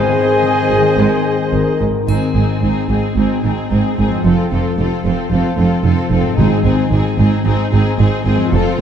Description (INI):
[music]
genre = cinematic, heroic adventure film score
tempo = 111 BPM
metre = 4/4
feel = straight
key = Ab major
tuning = A4 = 440 Hz
[part]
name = warm symphonic violin section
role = melody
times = 0.0-8.8 s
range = Ab4 to Eb5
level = -25 LUFS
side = left 5 dB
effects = none
[part]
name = bright flute section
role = second line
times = 0.0-1.8 s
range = Ab5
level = -21 LUFS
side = left 1 dB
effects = none
[part]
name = clear clarinet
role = second line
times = 0.0-1.8 s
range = Ab4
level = -27 LUFS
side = left 1 dB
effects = none
[part]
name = warm oboe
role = second line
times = 0.0-1.8 s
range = C5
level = -26 LUFS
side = right 1 dB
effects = none
[part]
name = warm studio violin section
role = second line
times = 0.0-8.8 s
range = Ab3 to F4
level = -26 LUFS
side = left 2 dB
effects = none
[part]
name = rich symphonic viola section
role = accompaniment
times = 0.0-8.8 s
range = C4 to Ab4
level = -23 LUFS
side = left 2 dB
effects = none
[part]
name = mellow French horn section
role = sustained chords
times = 0.0-2.1 s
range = Ab4 to C5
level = -22 LUFS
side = left 3 dB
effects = none
[part]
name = warm trombone section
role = sustained chords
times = 0.0-1.8 s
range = Eb3 to C4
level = -22 LUFS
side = left 1 dB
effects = none
[part]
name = concert harp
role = arpeggios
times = 0.0-8.8 s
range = F2 to A4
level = -22 LUFS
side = left 7 dB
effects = none
[part]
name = dark trumpet section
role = stabs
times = 0.0-1.8 s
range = Ab4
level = -21 LUFS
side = right 2 dB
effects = none
[part]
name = rich symphonic cello section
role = bass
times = 0.7-8.6 s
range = F2 to Ab2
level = -18 LUFS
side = right 3 dB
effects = none
[part]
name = rich symphonic double bass section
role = bass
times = 0.7-8.6 s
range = F1 to Ab1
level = -18 LUFS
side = right 3 dB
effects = none
[part]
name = triangle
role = percussion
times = 2.1-3.1 s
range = none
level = -38 LUFS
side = left 1 dB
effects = none
[part]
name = timpani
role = percussion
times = 6.4-7.1 s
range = Ab2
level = -19 LUFS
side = right 1 dB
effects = none
[sound]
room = moderate scoring stage reverb, RT60 2.0 s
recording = dark, warm production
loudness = -12 LUFS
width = side -8 dB against mid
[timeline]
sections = 0.0-2.1 A section; 2.1-8.8 B section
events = none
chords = 0.0 Ab; 4.3 F; 6.4 Ab